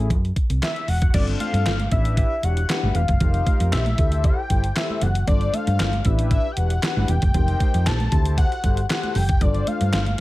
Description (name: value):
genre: early-eighties boogie funk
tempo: 116 BPM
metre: 4/4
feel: straight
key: unclear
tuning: A4 = 439 Hz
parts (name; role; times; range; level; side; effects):
- mellow synth brass; accompaniment; 0.0-10.0 s; C4 to C#5; -31 LUFS; left 4 dB; chorus
- hollow-body short-scale fingered electric bass; bass; 0.0-10.1 s; E1 to G2; -21 LUFS; equal; none
- clean 12-bit digital drum machine; drums; 0.1-10.2 s; crash cymbal, handclaps, hi-hat, kick drum, snare drum; -22 LUFS; equal; gated reverb
- fat analog lead; melody; 0.6-10.2 s; D5 to A5; -27 LUFS; left 2 dB; none
- congas; percussion; 1.1-10.2 s; none; -31 LUFS; right 3 dB; none
room: little or no reverb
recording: none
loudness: -18 LUFS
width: side -17 dB against mid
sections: 0.0-1.1 A section; 1.1-10.2 B section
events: none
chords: 0.0 F#m7; 1.1 G9sus4; 1.9 A9sus4; 3.2 F9sus4; 4.0 D9sus4; 5.3 G9sus4; 6.1 A9sus4; 7.3 F9sus4; 8.1 D9sus4; 9.4 G9sus4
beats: 0.10 0.62 | 1.14 1.66 2.17 2.69 | 3.21 3.73 4.24 4.76 | 5.28 5.79 6.31 6.83 | 7.35 7.86 8.38 8.90 | 9.41 9.93